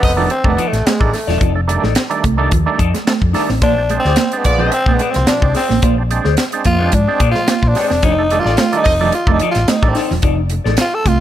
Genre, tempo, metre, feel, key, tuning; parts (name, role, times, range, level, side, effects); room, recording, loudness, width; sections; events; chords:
funk; 109 BPM; 4/4; straight; F mixolydian; A4 = 439 Hz
growling tenor saxophone; melody; 0.0-11.2 s; Ab3 to A4; -18 LUFS; left 1 dB
warm horn section; second line; 0.0-0.1, 4.0-4.8, 8.4-8.9 s; F4 to Eb5; -22 LUFS; right 3 dB
mellow electric guitar; riff; 0.0-11.2 s; F3 to C4; -22 LUFS; right 7 dB
overdriven tonewheel organ; stabs; 0.0-10.0 s; Bb2 to D4; -21 LUFS; right 6 dB; chorus vibrato
hollow-body short-scale fingered electric bass; bass; 0.0-11.2 s; E1 to Bb2; -17 LUFS; equal
tight funk drum kit; drums; 0.0-11.2 s; hi-hat, kick drum, snare drum; -17 LUFS; equal
mellow electric guitar; accompaniment; 0.2-11.0 s; Eb4 to D5; -23 LUFS; left 8 dB; phaser
small room ambience; -12 LUFS; side -12 dB against mid
0.0-11.2 A section
tenor saxophone solo 0.0-11.2
0.0 F13; 3.6 Bb9; 8.0 F13